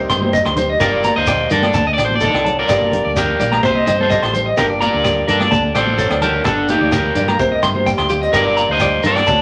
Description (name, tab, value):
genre	highlife guitar band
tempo	127 BPM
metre	4/4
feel	straight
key	G minor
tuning	A4 = 440 Hz
part	electric guitar at the edge of break-up	melody	0.0-9.4 s	D4 to Eb5	-20 LUFS	equal	none
part	picked swing-style acoustic guitar	accompaniment	0.0-9.4 s	G2 to Bb4	-28 LUFS	equal	none
part	deep dub fingered electric bass	bass	0.0-9.4 s	G1 to G2	-26 LUFS	equal	none
part	clean electric guitar	arpeggios	0.1-9.4 s	G4 to C6	-20 LUFS	equal	tremolo
part	vintage drum kit	drums	0.1-9.4 s	hi-hat, kick drum, rim click	-28 LUFS	equal	none
part	agogo bells	percussion	0.1-9.3 s	none	-32 LUFS	equal	none
part	shekere	percussion	0.1-9.4 s	none	-31 LUFS	equal	none
part	congas	percussion	0.2-9.4 s	none	-27 LUFS	equal	none
room	wet large studio reverb, RT60 0.9 s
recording	none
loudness	-16 LUFS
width	mono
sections	0.0-9.4 A section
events	none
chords	0.0 Cm; 0.8 Gm; 1.7 D; 2.7 Gm; 3.6 Cm; 4.6 Gm; 5.5 D; 6.5 Gm; 7.4 Cm; 8.3 Gm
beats	0.33 | 0.80 1.27 1.75 2.22 | 2.69 3.16 3.63 4.10 | 4.57 5.04 5.51 5.99 | 6.46 6.93 7.40 7.87 | 8.34 8.81 9.28